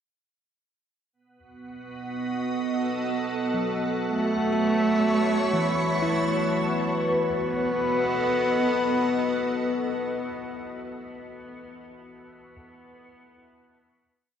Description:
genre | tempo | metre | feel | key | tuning
ambient | free time | none | none | B mixolydian | A4 = 441 Hz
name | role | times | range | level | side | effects
soft additive organ-like pad | sustained chords | 1.6-10.7 s | B3 to A5 | -28 LUFS | equal | ensemble chorus, built-in reverb
bell-like tine electric piano | arpeggios | 3.5-12.6 s | E3 to C#6 | -33 LUFS | equal | diffuse ambient delay
dark cello | melody | 4.1-10.3 s | A3 to B3 | -27 LUFS | equal | diffuse ambient delay
overtone-sweeping drone | drone | 4.7-10.3 s | B3 to B4 | -30 LUFS | left 2 dB | chorus, built-in reverb, phaser
wind-like tuned noise texture | texture | 4.5-7.1 s | C#5 to C#6 | -34 LUFS | left 1 dB | built-in reverb
room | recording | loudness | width
wet cathedral reverb, RT60 4.9 s | none | -23 LUFS | side -8 dB against mid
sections
1.2-7.1 A section; 7.1-10.0 final chord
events
fade-in on tine electric piano 1.2-7.1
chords
1.2 B7; 4.1 F#m7; 7.1 B7

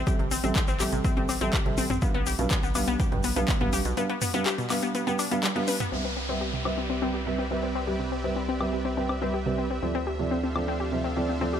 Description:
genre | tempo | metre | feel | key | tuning
progressive house | 123 BPM | 4/4 | straight | C major | A4 = 435 Hz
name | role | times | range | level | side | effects
glassy wavetable pluck | arpeggios | 0.0-11.6 s | B2 to B4 | -30 LUFS | left 3 dB | chorus, sidechain pumping, tape echo
round analog bass | bass | 0.0-11.6 s | A1 to D2 | -33 LUFS | equal | sidechain pumping
felt-muted upright piano | stabs | 0.1-11.6 s | F3 to G5 | -30 LUFS | right 3 dB | sidechain pumping, tape echo
electronic kick drum | drums | 0.1-3.6 s | none | -27 LUFS | equal | overdrive, studio reverb
house drum kit | drums | 0.1-10.7 s | handclaps, hi-hat, woodblock | -33 LUFS | left 2 dB | overdrive, low-pass filter on hats, studio reverb, low-pass filter on snare, low-pass filter on perc
tube shaker | percussion | 0.1-5.9 s | none | -38 LUFS | left 4 dB | none
electronic congas and toms | percussion | 0.4-5.9 s | none | -35 LUFS | right 4 dB | sidechain pumping on perc, studio reverb, sidechain pumping on toms
supersaw pad | sustained chords | 5.9-11.6 s | C4 to F5 | -35 LUFS | right 1 dB | sidechain pumping
downlifter | sound effects | 5.9-9.8 s | none | -38 LUFS | equal | none
room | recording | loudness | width
light reverb, digital ambience | none | -24 LUFS | side -9 dB against mid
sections
0.0-5.9 A section; 5.9-11.6 B section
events
band accent 5.4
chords
0.0 Am7; 2.0 G7/B; 5.9 Cmaj7; 9.8 Dm7

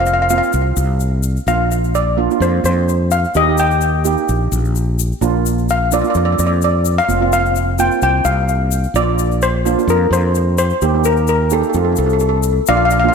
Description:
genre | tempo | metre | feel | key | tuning
calypso | 128 BPM | 4/4 | swing 54% on 16ths | Bb major | A4 = 441 Hz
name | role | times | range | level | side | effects
steel pan | melody | 0.0-13.1 s | A4 to G5 | -17 LUFS | left 2 dB | ping-pong delay
steel pan | accompaniment | 0.0-13.1 s | A3 to G4 | -20 LUFS | right 8 dB | none
mellow fretless electric bass | bass | 0.0-13.1 s | F1 to F2 | -17 LUFS | left 1 dB | none
tube shaker | percussion | 0.1-13.0 s | none | -27 LUFS | left 20 dB | none
room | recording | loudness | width
moderate lush hall reverb, RT60 1.6 s, studio ambience | dreamy mix soaked in reverb | -13 LUFS | side -6 dB against mid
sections
0.0-12.7 A section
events
none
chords
0.0 Fsus4; 1.5 Bbadd9; 3.3 Eb; 5.2 Bb; 7.1 Fsus4; 9.0 Bbadd9; 10.8 Eb; 11.8 F

